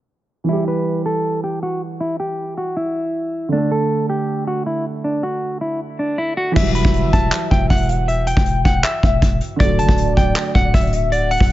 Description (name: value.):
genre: hip hop, trap.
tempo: 158 BPM.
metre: 4/4.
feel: half-time.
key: E minor.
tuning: A4 = 440 Hz.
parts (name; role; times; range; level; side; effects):
dark baby grand piano; accompaniment; 0.4-11.5 s; D3 to A4; -23 LUFS; right 3 dB; low-pass filter.
clean electric guitar; melody; 0.5-11.5 s; D4 to B5; -21 LUFS; equal; low-pass filter.
gliding portamento lead; second line; 6.6-11.5 s; D5 to G5; -25 LUFS; left 2 dB; chorus, phaser, digital delay.
growling 808-style bass; bass; 6.6-11.5 s; D1 to G1; -19 LUFS; equal; none.
vintage brush drum kit; drums; 6.6-11.5 s; crash cymbal, handclaps, hi-hat, kick drum; -17 LUFS; equal; none.
room: studio reverb.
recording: low-pass filter, nothing above 7.7 kHz.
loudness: -16 LUFS.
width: side -15 dB against mid.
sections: 0.5-6.6 A section; 6.6-11.5 B section.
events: filter sweep 0.5-6.6.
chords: 0.5 Em; 3.5 D; 6.6 Emadd9; 9.6 D.